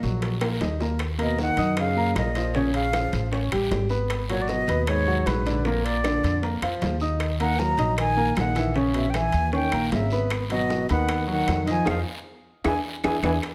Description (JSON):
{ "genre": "Afro-Cuban jazz", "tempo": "154 BPM", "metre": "4/4", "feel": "straight", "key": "Eb minor", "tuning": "A4 = 440 Hz", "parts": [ { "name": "mellow silver concert flute", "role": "melody", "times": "0.0-13.4 s", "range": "Bb4 to Bb5", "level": "-30 LUFS", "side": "equal", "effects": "none" }, { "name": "breathy trombone", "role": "second line", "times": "0.0-13.3 s", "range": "F2 to Gb3", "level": "-32 LUFS", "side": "equal", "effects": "none" }, { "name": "warm grand piano", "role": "accompaniment", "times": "0.0-13.4 s", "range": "Bb2 to Eb6", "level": "-30 LUFS", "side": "equal", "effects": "none" }, { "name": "upright bass", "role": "bass", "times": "0.0-13.4 s", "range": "Ab1 to Gb2", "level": "-29 LUFS", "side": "equal", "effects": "none" }, { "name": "bongos", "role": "percussion", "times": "0.0-13.5 s", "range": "none", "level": "-38 LUFS", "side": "equal", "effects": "none" }, { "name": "guiro", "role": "percussion", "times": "0.0-13.5 s", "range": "none", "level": "-43 LUFS", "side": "equal", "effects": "none" }, { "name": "timbales", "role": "percussion", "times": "0.2-13.5 s", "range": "none", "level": "-37 LUFS", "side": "equal", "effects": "none" }, { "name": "claves", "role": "percussion", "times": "0.4-13.5 s", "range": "none", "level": "-40 LUFS", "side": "equal", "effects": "none" } ], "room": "moderate large studio reverb, RT60 1.2 s", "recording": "none", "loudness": "-24 LUFS", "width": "mono", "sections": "0.0-1.0 A section; 1.0-13.4 B section", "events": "drum fill 0.4-1.0, 12.3-13.4; band accent 11.9-13.4", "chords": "0.0 Ebm; 1.0 Ebm7; 2.5 Bbm; 3.3 A9; 4.1 Abm7; 5.7 Bb; 7.2 Ebm; 8.8 Bbm7b5; 9.5 Eb7b9; 10.3 Abm7; 11.9 Fm7; 12.6 E7" }